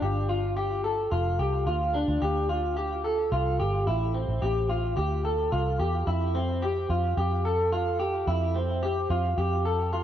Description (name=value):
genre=dream pop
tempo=109 BPM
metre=4/4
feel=straight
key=unclear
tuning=A4 = 442 Hz
part: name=electric guitar at the edge of break-up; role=arpeggios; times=0.0-10.0 s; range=C4 to A4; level=-27 LUFS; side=left 1 dB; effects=lush chorus, digital delay
part: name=vintage muted fingered electric bass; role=bass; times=0.0-10.0 s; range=F1 to F2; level=-28 LUFS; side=right 1 dB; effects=none
room=moderate plate reverb, RT60 2.9 s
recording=worn, warbling old tape, cassette tape, warbly pitch drift, nothing above 10.6 kHz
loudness=-24 LUFS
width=side -10 dB against mid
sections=0.0-6.1 A section; 6.1-10.0 B section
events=none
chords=0.0 Dm7; 3.9 Am7; 5.0 Dm7; 6.1 Fmaj7